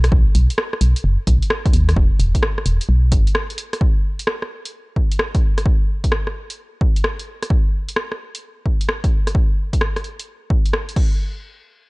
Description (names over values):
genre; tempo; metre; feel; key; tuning
UK garage, two-step garage; 130 BPM; 4/4; swing 66% on 16ths; unclear; A4 = 440 Hz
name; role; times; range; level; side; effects
organ-like FM bass; bass; 0.0-3.2 s; E1 to D#2; -15 LUFS; equal; sidechain pumping
punchy analog drum machine; drums; 0.0-11.1 s; crash cymbal, hi-hat, rim click; -24 LUFS; equal; none
electronic kick drum; drums; 0.1-11.1 s; none; -17 LUFS; equal; none
room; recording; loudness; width
little or no reverb; dry, gritty hardware recording, transformer saturation, cassette tape, nothing above 10.9 kHz; -16 LUFS; side -26 dB against mid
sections
0.0-11.2 A section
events
none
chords
none